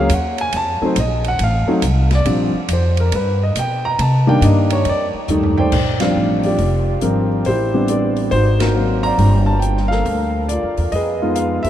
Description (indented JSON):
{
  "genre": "jazz piano trio",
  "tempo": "139 BPM",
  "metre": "4/4",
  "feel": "swing 66% on 8ths",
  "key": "Bb major",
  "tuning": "A4 = 440 Hz",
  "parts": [
    { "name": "dark baby grand piano", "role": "melody", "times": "0.0-11.7 s", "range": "Eb3 to Bb5", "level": "-17 LUFS", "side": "equal", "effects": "none" },
    { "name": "upright bass", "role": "bass", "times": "0.0-11.7 s", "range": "F1 to C3", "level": "-18 LUFS", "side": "equal", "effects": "none" },
    { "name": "open jazz drum kit", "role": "drums", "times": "0.1-11.7 s", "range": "crash cymbal, hi-hat, kick drum, ride cymbal, snare drum, toms", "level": "-26 LUFS", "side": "equal", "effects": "none" }
  ],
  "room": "moderate huge ambient reverb, RT60 8.5 s",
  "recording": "in a vast, echoing space",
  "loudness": "-14 LUFS",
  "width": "side -11 dB against mid",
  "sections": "0.0-5.7 A section; 5.7-11.7 B section",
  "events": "grand piano solo 0.0-5.7; drum fill 5.3-5.7; band accent 5.9, 8.5",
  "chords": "0.0 Ebm9; 0.5 F7b9; 2.3 Bb69; 3.1 G; 4.0 Cm7; 4.9 F13; 5.7 Bb69; 7.5 Am11; 8.3 Ab13; 9.2 Gm9; 10.9 Fm7b5",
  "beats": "0.10 | 0.53 0.96 1.40 1.83 | 2.26 2.69 3.12 3.56 | 3.99 4.42 4.85 5.29 | 5.72 6.15 6.58 7.02 | 7.45 7.88 8.32 8.75 | 9.19 9.62 10.05 10.49 | 10.92 11.35"
}